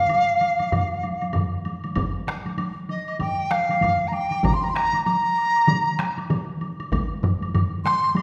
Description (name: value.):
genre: japanese traditional, taiko drum ensemble.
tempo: 97 BPM.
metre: 4/4.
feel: swing 60% on 16ths.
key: F suspended pentatonic.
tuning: A4 = 440 Hz.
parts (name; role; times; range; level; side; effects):
large dizi; melody; 0.0-8.2 s; Eb5 to C6; -23 LUFS; equal; none.
taiko ensemble; percussion; 0.1-8.2 s; none; -31 LUFS; equal; none.
woodblock; percussion; 0.1-8.2 s; none; -38 LUFS; equal; none.
taiko ensemble; percussion; 0.7-8.0 s; none; -30 LUFS; equal; none.
taiko ensemble; percussion; 0.7-6.5 s; none; -31 LUFS; equal; none.
taiko ensemble; percussion; 2.0-7.1 s; none; -31 LUFS; equal; none.
room: wet recital hall reverb, RT60 1.6 s.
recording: none.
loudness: -23 LUFS.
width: mono.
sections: 0.0-8.2 A section.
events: none.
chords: none.